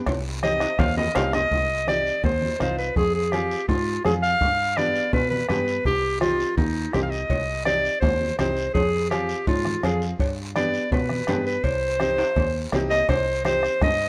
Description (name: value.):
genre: latin, cumbia.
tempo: 166 BPM.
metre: 4/4.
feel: straight.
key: C harmonic minor.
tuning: A4 = 444 Hz.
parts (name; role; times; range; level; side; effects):
fingered electric bass; bass; 0.1-14.1 s; C2 to B2; -30 LUFS; equal; none.
bombo; percussion; 0.1-14.0 s; none; -29 LUFS; equal; none.
congas; percussion; 0.1-14.0 s; none; -34 LUFS; equal; none.
cowbell and timbales; percussion; 0.1-1.4, 7.3-14.0 s; none; -36 LUFS; equal; none.
guiro; percussion; 0.1-14.1 s; none; -43 LUFS; equal; none.
clear clarinet; melody; 0.4-14.1 s; Eb4 to F5; -26 LUFS; equal; none.
bright upright piano; accompaniment; 0.4-13.7 s; B3 to Ab4; -33 LUFS; equal; none.
room: light reverb.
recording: none.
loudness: -23 LUFS.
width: mono.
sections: 0.0-1.5 A section; 1.5-13.1 B section.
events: clarinet solo 0.0-1.5; drum fill 0.6-1.5, 12.2-13.1.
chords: 0.1 Cm; 3.0 Fm; 4.4 G7; 5.9 Cm; 8.7 Fm; 10.2 G; 11.6 Cm.